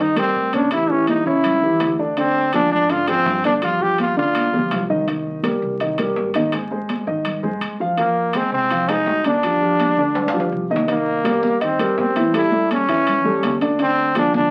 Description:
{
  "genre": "latin, salsa",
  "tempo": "165 BPM",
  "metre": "4/4",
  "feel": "straight",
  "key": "C minor",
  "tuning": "A4 = 440 Hz",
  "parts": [
    { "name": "brilliant trombone", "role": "melody", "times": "0.0-4.9, 8.0-14.5 s", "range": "Bb3 to G4", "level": "-21 LUFS", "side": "equal", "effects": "none" },
    { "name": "dark grand piano", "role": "accompaniment", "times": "0.0-14.5 s", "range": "Db3 to F5", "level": "-23 LUFS", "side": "equal", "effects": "none" },
    { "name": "upright bass", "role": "bass", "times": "0.0-14.5 s", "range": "G1 to A2", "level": "-36 LUFS", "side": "equal", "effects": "none" },
    { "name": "congas", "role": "percussion", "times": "0.2-14.5 s", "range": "none", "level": "-29 LUFS", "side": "equal", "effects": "none" },
    { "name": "timbales", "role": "percussion", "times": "0.2-14.3 s", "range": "none", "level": "-31 LUFS", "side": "equal", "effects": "none" }
  ],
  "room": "wet studio reverb, RT60 0.6 s",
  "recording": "very old 78 rpm record, vinyl crackle",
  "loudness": "-19 LUFS",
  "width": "mono",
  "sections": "0.0-10.9 A section; 10.9-14.5 A section",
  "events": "drum fill 4.3-5.1, 10.2-10.9",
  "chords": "0.0 Cm7; 0.7 A7; 2.2 Dm7b5; 3.6 G5; 5.1 Cm7; 6.5 Ab; 8.0 Fm; 9.4 G5; 10.9 Cm7; 12.3 A7; 13.8 Dm7b5"
}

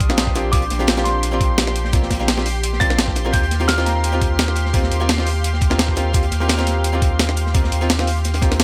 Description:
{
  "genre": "liquid drum and bass",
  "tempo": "171 BPM",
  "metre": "4/4",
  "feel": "straight",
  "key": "unclear",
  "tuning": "A4 = 441 Hz",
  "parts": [
    { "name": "warm grand piano", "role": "melody", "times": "0.0-8.6 s", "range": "Bb5 to A6", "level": "-28 LUFS", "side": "equal", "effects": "dub echo" },
    { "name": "lush unison pad", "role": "sustained chords", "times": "0.0-8.6 s", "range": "D4 to C6", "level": "-30 LUFS", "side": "equal", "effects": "chorus, sidechain pumping" },
    { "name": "warm sub bass", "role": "bass", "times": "0.0-8.6 s", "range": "Bb1 to Eb2", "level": "-23 LUFS", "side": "equal", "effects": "tube saturation" },
    { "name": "breakbeat sampler-style drum kit", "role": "drums", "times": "0.0-8.6 s", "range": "hi-hat, snare drum", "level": "-23 LUFS", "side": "equal", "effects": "none" },
    { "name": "crunchy breakbeat drum kit", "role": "drums", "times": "0.0-8.6 s", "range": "hi-hat, snare drum", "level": "-31 LUFS", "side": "equal", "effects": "high-pass filter on hats, high-pass filter on snare, high-pass filter on room" },
    { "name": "electronic kick drum", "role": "drums", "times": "0.0-8.5 s", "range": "none", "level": "-22 LUFS", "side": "equal", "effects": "none" },
    { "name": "archtop guitar, miked and amplified", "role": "accompaniment", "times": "0.1-8.6 s", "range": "Bb3 to Bb4", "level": "-27 LUFS", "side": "equal", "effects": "tape echo" }
  ],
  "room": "light reverb, studio reverb",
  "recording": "none",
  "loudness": "-18 LUFS",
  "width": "mono",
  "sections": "0.0-8.6 A section",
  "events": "none",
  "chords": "0.0 Bb69; 3.3 Eb69"
}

